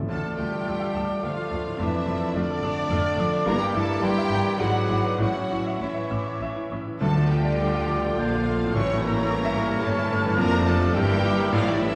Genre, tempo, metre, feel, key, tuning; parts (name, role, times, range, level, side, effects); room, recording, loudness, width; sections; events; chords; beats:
classical, romantic movement for piano and orchestra; 96-113 BPM; 3/4; rubato; D minor; A4 = 443 Hz
clear baby grand piano; melody; 0.0-11.9 s; D2 to E6; -30 LUFS; equal
mellow clarinet; second line; 0.0-11.9 s; D4 to Bb4; -39 LUFS; equal
timpani; percussion; 0.0, 7.0-9.5 s; A2 to D3; -32 LUFS; equal
warm symphonic violin section; melody; 0.1-11.9 s; D5 to C#6; -37 LUFS; equal
mellow cor anglais; second line; 0.1-11.9 s; C#5 to E5; -38 LUFS; equal
mellow hollow silver concert flute; second line; 0.1-11.9 s; B5 to G6; -36 LUFS; equal
rich symphonic violin section; second line; 0.1-11.9 s; D4 to C#5; -38 LUFS; equal
rich symphonic viola section; accompaniment; 0.1-11.9 s; E3 to F4; -36 LUFS; equal
warm bassoon; accompaniment; 0.1-11.9 s; D3 to B3; -38 LUFS; equal
mellow French horn section; sustained chords; 0.1-11.9 s; D3 to C#4; -34 LUFS; equal
rich symphonic cello section; bass; 0.1-11.9 s; D2 to D3; -33 LUFS; equal
rich symphonic double bass section; bass; 0.1-11.9 s; F1 to D2; -34 LUFS; equal
wet concert hall reverb, RT60 2.3 s; studio ambience; -24 LUFS; mono
0.1-11.9 A section
0.1 Dm; 1.8 Dm/F; 3.5 Em7b5/G; 4.6 E7/G#; 5.2 A; 7.0 Dm; 8.8 A; 10.4 Dm/F; 11.0 Edim/G
| 0.10 0.67 1.24 | 1.80 2.36 2.91 | 3.46 4.02 4.60 | 5.20 5.82 6.42 | 7.02 7.61 8.19 | 8.75 9.30 9.84 | 10.38 10.96 11.54